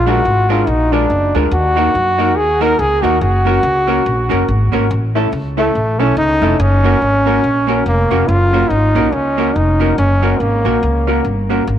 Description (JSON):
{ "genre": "ska", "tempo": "142 BPM", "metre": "4/4", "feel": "swing 59% on 8ths", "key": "F# major", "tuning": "A4 = 440 Hz", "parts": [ { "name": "bright trombone", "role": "melody", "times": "0.0-11.2 s", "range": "A3 to A#4", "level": "-15 LUFS", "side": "equal", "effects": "tape echo" }, { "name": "upright bass", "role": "bass", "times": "0.0-11.8 s", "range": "E#1 to F#2", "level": "-16 LUFS", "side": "equal", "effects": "none" }, { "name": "vintage hollow-body jazz guitar", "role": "accompaniment", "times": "0.1-11.6 s", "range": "G#3 to A#4", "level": "-21 LUFS", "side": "right 11 dB", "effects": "none" }, { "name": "dark upright piano", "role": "stabs", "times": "0.1-11.6 s", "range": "C#4 to A#4", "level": "-22 LUFS", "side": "left 10 dB", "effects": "none" } ], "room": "light reverb, small room ambience", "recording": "1960s-style stereo with parts hard left and right", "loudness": "-12 LUFS", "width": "side -10 dB against mid", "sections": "0.0-8.3 A section; 8.3-11.8 B section", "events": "none", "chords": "0.0 A#7; 1.5 D#m; 3.2 F#; 4.9 A; 6.6 F#" }